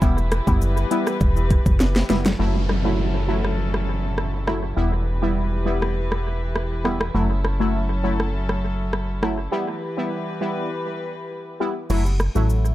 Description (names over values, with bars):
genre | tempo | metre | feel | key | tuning
dancehall | 101 BPM | 4/4 | straight | F# phrygian | A4 = 442 Hz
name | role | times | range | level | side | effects
synth brass stab | accompaniment | 0.0-12.7 s | F#3 to E4 | -26 LUFS | equal | chorus, phaser, analog delay
warm studio string section | sustained chords | 0.0-11.9 s | E3 to B4 | -30 LUFS | left 1 dB | sidechain pumping
plucky analog bass | bass | 0.0-12.7 s | E1 to A1 | -22 LUFS | equal | none
island pop drum kit | drums | 0.0-12.7 s | crash cymbal, hi-hat, kick drum, rim click, shaker, snare drum | -23 LUFS | equal | analog delay
downlifter | sound effects | 2.4-7.1 s | none | -32 LUFS | equal | none
room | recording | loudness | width
little or no reverb | echo-heavy mix | -20 LUFS | side -15 dB against mid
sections
0.0-2.4 A section; 2.4-11.9 B section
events
drum fill 1.8-2.4; break 9.5-11.9; kick muted 11.9-12.7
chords
0.0 Em; 2.4 F#m7; 4.8 Em; 7.1 F#m7; 9.5 Em; 11.9 F#m7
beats
| 0.02 0.61 1.21 1.80 | 2.40 2.99 3.58 4.18 | 4.77 5.37 5.96 6.55 | 7.15 7.74 8.34 8.93 | 9.53 10.12 10.71 11.31 | 11.90 12.49